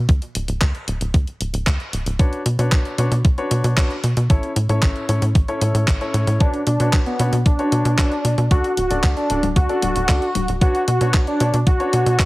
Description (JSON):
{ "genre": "italo disco", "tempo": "114 BPM", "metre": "4/4", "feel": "straight", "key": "B minor", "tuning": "A4 = 438 Hz", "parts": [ { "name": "tight sequencer bass", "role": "bass", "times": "0.0-12.3 s", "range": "D1 to B2", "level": "-20 LUFS", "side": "equal", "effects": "tube saturation" }, { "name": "clean 12-bit digital drum machine", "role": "drums", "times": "0.1-12.3 s", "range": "handclaps, hi-hat, toms", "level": "-26 LUFS", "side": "left 1 dB", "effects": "none" }, { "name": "electronic kick drum", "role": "drums", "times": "0.1-12.3 s", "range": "none", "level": "-17 LUFS", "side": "equal", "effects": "none" }, { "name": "warm grand piano", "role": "stabs", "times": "2.2-12.3 s", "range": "C#4 to D5", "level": "-26 LUFS", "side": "left 2 dB", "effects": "low-pass filter" }, { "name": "wide unison lead", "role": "melody", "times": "6.4-12.3 s", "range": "B3 to F#4", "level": "-21 LUFS", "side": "equal", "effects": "cassette tape, digital delay" } ], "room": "little or no reverb", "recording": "heavily compressed radio sound, multiband compression", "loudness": "-16 LUFS", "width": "side -19 dB against mid", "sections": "0.0-12.3 A section", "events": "none", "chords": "0.0 N.C.; 2.2 Bmadd9; 4.3 A; 6.4 Bmadd9; 8.5 D; 10.6 Bmadd9" }